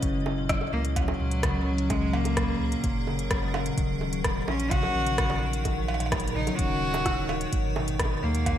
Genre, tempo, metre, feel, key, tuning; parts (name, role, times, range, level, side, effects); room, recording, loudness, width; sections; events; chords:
IDM; 128 BPM; 4/4; straight; A4 = 439 Hz
icy glass pad; sustained chords; 0.0-8.6 s; D#3 to F#5; -33 LUFS; right 2 dB; chorus, built-in reverb
concert harp; arpeggios; 0.0-8.6 s; A#2 to G#3; -32 LUFS; left 5 dB; vintage 12-bit sampler grit, ping-pong delay
warm sub bass; bass; 0.0-8.6 s; D#1 to D#2; -31 LUFS; equal
electronic kick drum; drums; 0.0-8.6 s; -30 LUFS; equal
organic electronic drum kit; drums; 0.0-8.6 s; bongos, cowbell, hi-hat, rim click; -31 LUFS; right 2 dB; gated reverb, digital delay
rich cello; melody; 0.7-8.6 s; F#3 to F#4; -31 LUFS; equal; ping-pong delay
light reverb, digital ambience; bright 1980s-style digital production; -24 LUFS; side -10 dB against mid
0.0-8.6 A section
0.0 F#add9; 3.8 D#m7; 7.5 G#m7